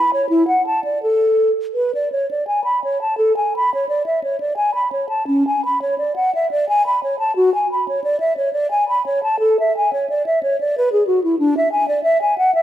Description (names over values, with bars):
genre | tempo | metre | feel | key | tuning
classical, baroque-style fantasia for unaccompanied flute | 81-94 BPM | 3/4 | rubato | A major | A4 = 440 Hz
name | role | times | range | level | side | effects
mellow hollow silver concert flute | solo | 0.0-12.6 s | C#4 to B5 | -16 LUFS | equal | none
room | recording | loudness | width
moderate recital hall reverb, RT60 1.4 s | none | -16 LUFS | side -12 dB against mid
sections
0.0-3.2 A section; 3.2-12.6 A section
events
none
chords
none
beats
0.29 | 1.01 1.74 2.47 | 3.19 3.89 4.58 | 5.30 6.00 6.69 | 7.37 8.03 8.70 | 9.40 10.09 10.75 | 11.39 12.05